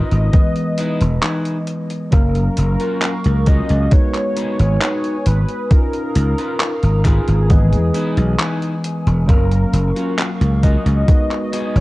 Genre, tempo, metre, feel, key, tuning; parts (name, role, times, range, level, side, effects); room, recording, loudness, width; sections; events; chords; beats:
vaporwave; 67 BPM; 4/4; straight; F# major; A4 = 439 Hz
warm velvety synth lead; melody; 0.0-11.8 s; G#4 to D#5; -26 LUFS; equal; chorus, tape echo
tine electric piano; accompaniment; 0.0-11.8 s; E3 to E#5; -22 LUFS; equal; analog chorus, vintage 12-bit sampler grit
clean electric guitar; riff; 0.0-11.8 s; B3 to B4; -28 LUFS; left 2 dB; lush chorus, analog delay
slap bass; bass; 0.1-11.8 s; E1 to E2; -15 LUFS; equal; tube saturation
detuned 8-bit digital drum machine; drums; 0.1-11.8 s; handclaps, hi-hat; -24 LUFS; equal; overdrive, vintage 12-bit sampler grit
electronic kick drum; drums; 0.3-11.3 s; -13 LUFS; equal; overdrive, vintage 12-bit sampler grit
warbly tape-like pad; sustained chords; 2.5-11.8 s; A#4 to D#6; -33 LUFS; equal; chorus, built-in reverb
little or no reverb; dark, warm production, cassette tape; -14 LUFS; side -19 dB against mid
0.0-11.8 A section
0.3 Emaj7; 2.1 F#maj7; 3.9 G#m7; 5.7 C#13; 7.5 Emaj7; 9.3 F#maj7; 11.1 G#m7
0.34 1.23 | 2.13 3.02 3.92 4.82 | 5.71 6.61 7.50 8.40 | 9.29 10.19 11.08